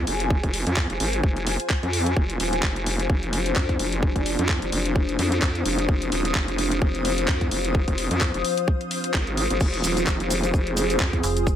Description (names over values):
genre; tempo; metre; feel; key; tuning
bass house; 129 BPM; 4/4; swing 56% on 16ths; F dorian; A4 = 441 Hz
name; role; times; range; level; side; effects
sweeping resonant pad; sustained chords; 0.0-11.6 s; F3 to Ab4; -31 LUFS; right 1 dB; chorus, sidechain pumping
vowel-sweep wobble bass; bass; 0.0-11.2 s; Eb1 to F2; -25 LUFS; equal; chorus, sidechain pumping
ethereal airy pad; texture; 0.0-11.6 s; F4 to Eb6; -29 LUFS; left 3 dB; ensemble chorus, built-in reverb, phaser, sidechain pumping
garage drum kit; drums; 0.1-11.4 s; crash cymbal, handclaps, hi-hat; -28 LUFS; equal; none
electronic kick drum; drums; 0.3-11.6 s; none; -23 LUFS; equal; none
maracas; percussion; 9.6-11.6 s; none; -32 LUFS; right 4 dB; none
metallic FM bass; bass; 11.2-11.6 s; F1; -25 LUFS; equal; tube saturation, sidechain pumping
room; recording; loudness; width
digital ambience; none; -21 LUFS; side -10 dB against mid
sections
0.0-11.6 A section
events
none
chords
0.0 Fm